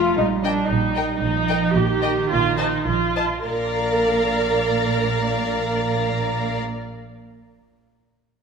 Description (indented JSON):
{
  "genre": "quick classical-period movement for string orchestra",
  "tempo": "101-116 BPM",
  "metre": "2/4",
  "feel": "straight",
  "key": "Bb major",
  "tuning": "A4 = 437 Hz",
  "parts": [
    { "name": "rich chamber viola section", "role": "accompaniment", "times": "0.0-6.6 s", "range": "D4 to Bb4", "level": "-22 LUFS", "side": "right 2 dB", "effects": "none" },
    { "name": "rich chamber cello section", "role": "bass", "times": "0.0-6.6 s", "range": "Bb2 to A3", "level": "-26 LUFS", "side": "right 5 dB", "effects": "none" },
    { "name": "rich chamber double bass section", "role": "bass", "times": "0.0-6.6 s", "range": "Bb1", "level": "-27 LUFS", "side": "right 4 dB", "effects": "none" },
    { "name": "rich chamber violin section", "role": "melody", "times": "0.4-6.6 s", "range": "G5 to Bb5", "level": "-30 LUFS", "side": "left 5 dB", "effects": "none" },
    { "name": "warm symphonic violin section", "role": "second line", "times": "0.4-6.6 s", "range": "Bb4 to F5", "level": "-28 LUFS", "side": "left 4 dB", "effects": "none" }
  ],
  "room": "wet scoring stage reverb, RT60 1.9 s",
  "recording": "none",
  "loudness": "-19 LUFS",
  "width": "side -6 dB against mid",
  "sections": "0.0-3.5 A section; 3.5-5.8 B section",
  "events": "slowing down 0.7-3.5",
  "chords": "0.2 Eb/Bb; 2.3 F7(no3)/Bb; 3.5 Bb"
}